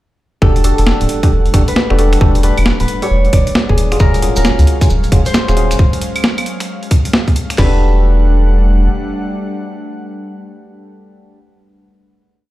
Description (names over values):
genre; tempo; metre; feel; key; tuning
UK garage, two-step garage; 134 BPM; 4/4; swing 63% on 16ths; E dorian; A4 = 440 Hz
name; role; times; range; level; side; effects
Celtic harp; melody; 0.4-11.4 s; G#4 to D5; -22 LUFS; left 1 dB; dub echo
airy breathy pad; sustained chords; 0.4-11.4 s; F#3 to F#5; -24 LUFS; equal; chorus, sidechain pumping
percussive organ stab; stabs; 0.4-11.4 s; C#4 to A4; -21 LUFS; left 1 dB; wide subtle chorus, cassette tape, digital delay
soft dub sub bass; bass; 0.4-8.9 s; D1 to C#2; -12 LUFS; equal; none
garage drum kit; drums; 0.4-7.7 s; crash cymbal, kick drum, snare drum; -11 LUFS; equal; overdrive
breakbeat sampler-style drum kit; drums; 0.6-7.6 s; claves, finger snaps, hi-hat, snare drum; -18 LUFS; equal; none
maracas; percussion; 4.0-5.8 s; none; -27 LUFS; right 2 dB; none
room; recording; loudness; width
little or no reverb; played on a big sound system in a bare room, large studio reverb; -11 LUFS; side -16 dB against mid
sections
0.4-7.6 drop; 7.6-11.2 final chord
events
drop 0.4-7.6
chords
0.4 Em11; 3.8 D#m11; 7.6 Em11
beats
| 0.42 0.87 1.31 1.76 | 2.21 2.66 3.10 3.55 | 4.00 4.45 4.90 5.34 | 5.79 6.24 6.69 7.13 | 7.58 8.03 8.48 8.93 | 9.37 9.82 10.27 10.72